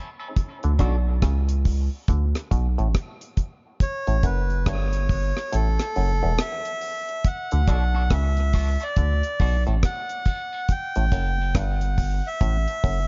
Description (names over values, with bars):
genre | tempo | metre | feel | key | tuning
dub reggae | 70 BPM | 4/4 | swing 62% on 16ths | D major | A4 = 435 Hz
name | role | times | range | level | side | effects
electric guitar at the edge of break-up | accompaniment | 0.0-1.0, 7.7-11.3 s | C#4 to A4 | -38 LUFS | equal | spring reverb, high-pass filter, dub echo
deep reggae drum kit | drums | 0.4-13.1 s | hi-hat, kick drum, rim click | -25 LUFS | equal | none
muted clav | riff | 0.6-13.0 s | E2 to D3 | -35 LUFS | equal | overdrive, dub echo
soft dub sub bass | bass | 0.6-13.1 s | E1 to D2 | -24 LUFS | equal | none
melodica | melody | 3.8-13.1 s | A4 to G5 | -31 LUFS | equal | dub echo
mellow tonewheel organ | accompaniment | 7.5-10.6 s | none | barely audible | none | none
room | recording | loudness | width
studio reverb | dark, warm production, nothing above 7.5 kHz | -24 LUFS | mono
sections
0.0-13.1 A section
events
break 0.0-7.2; kick muted 5.5-7.2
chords
0.4 D5; 3.8 A; 7.2 D; 10.7 A5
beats
| 0.36 1.22 2.08 2.94 | 3.80 4.66 5.52 6.38 | 7.24 8.10 8.96 9.82 | 10.69 11.55 12.41